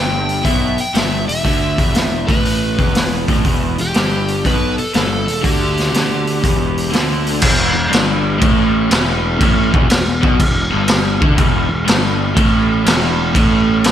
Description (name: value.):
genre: blues rock power trio and southern rock.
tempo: 121 BPM.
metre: 4/4.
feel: swing 67% on 8ths.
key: E minor.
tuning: A4 = 441 Hz.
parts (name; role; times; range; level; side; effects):
overdriven slide guitar; melody; 0.0-6.9 s; G4 to G5; -21 LUFS; right 1 dB; slapback echo.
raw garage guitar; riff; 0.0-13.9 s; E2 to D3; -18 LUFS; equal; overdrive, slapback echo.
fuzz picked electric bass; bass; 0.0-13.9 s; E1 to D2; -21 LUFS; equal; overdrive.
raw garage drum kit; drums; 0.3-13.9 s; crash cymbal, hi-hat, kick drum, snare drum; -16 LUFS; equal; none.
room: light reverb, small room ambience.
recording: none.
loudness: -13 LUFS.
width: side -10 dB against mid.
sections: 0.0-7.4 A section; 7.4-13.9 B section.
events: none.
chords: 0.0 Em.